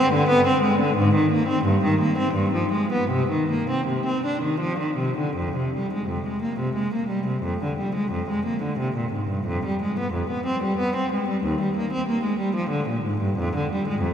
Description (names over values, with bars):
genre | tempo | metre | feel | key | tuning
classical, baroque-style suite movement for unaccompanied cello | 76-94 BPM | 3/4 | rubato | C minor | A4 = 439 Hz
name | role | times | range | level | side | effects
rich cello | solo | 0.0-14.1 s | Eb2 to D4 | -21 LUFS | equal | none
room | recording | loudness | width
wet cathedral reverb, RT60 4.3 s | none | -21 LUFS | side -8 dB against mid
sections
0.0-5.4 A section; 5.4-14.1 A section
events
none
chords
none